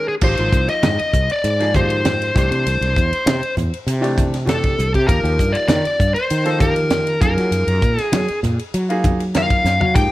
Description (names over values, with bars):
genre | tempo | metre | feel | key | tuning
electric jazz fusion | 99 BPM | 4/4 | straight | unclear | A4 = 440 Hz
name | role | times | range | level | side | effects
smooth overdriven lead guitar | melody | 0.0-10.1 s | G4 to G5 | -19 LUFS | left 1 dB | none
bright baby grand piano | accompaniment | 0.0-10.1 s | Eb3 to Bb4 | -25 LUFS | equal | none
fretless electric bass | bass | 0.2-10.1 s | Ab1 to Gb3 | -20 LUFS | equal | none
tight funk drum kit | drums | 0.2-10.1 s | crash cymbal, hi-hat, kick drum, ride cymbal, snare drum, toms | -21 LUFS | equal | none
congas | percussion | 0.2-10.0 s | none | -24 LUFS | equal | none
room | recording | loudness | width
light reverb | none | -15 LUFS | side -16 dB against mid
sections
0.2-10.1 A section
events
break 0.0; drum fill 9.6-10.0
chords
0.2 Abmaj9; 2.3 Cadd9; 5.1 Ebadd9; 7.2 Gbmaj9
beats
| 0.22 0.83 1.44 2.04 | 2.65 3.26 3.87 4.48 | 5.09 5.70 6.30 6.91 | 7.52 8.13 8.74 9.35 | 9.95